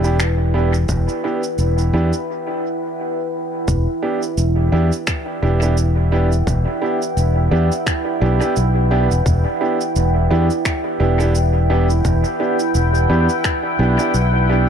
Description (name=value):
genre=ambient dub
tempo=86 BPM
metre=4/4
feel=swing 57% on 16ths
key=E minor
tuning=A4 = 440 Hz
part: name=deep dark ambient pad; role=sustained chords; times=0.0-14.7 s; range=E4 to G5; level=-22 LUFS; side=equal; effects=chorus, built-in reverb
part: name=warm upright piano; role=stabs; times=0.0-14.7 s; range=B3 to G4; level=-22 LUFS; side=right 3 dB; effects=dub echo
part: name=fingered electric bass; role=bass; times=0.0-14.7 s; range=E1 to E2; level=-16 LUFS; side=left 1 dB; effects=none
part: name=electronic cabasa and finger snaps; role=drums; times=0.0-14.3 s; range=none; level=-28 LUFS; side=right 1 dB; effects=dub echo
part: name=electronic kick drum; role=drums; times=0.9-13.6 s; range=none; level=-22 LUFS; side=left 1 dB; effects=none
room=digital ambience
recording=echo-heavy mix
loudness=-15 LUFS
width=side -8 dB against mid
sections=0.0-3.7 A section; 3.7-14.7 B section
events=break 2.3-3.7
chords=0.0 Em7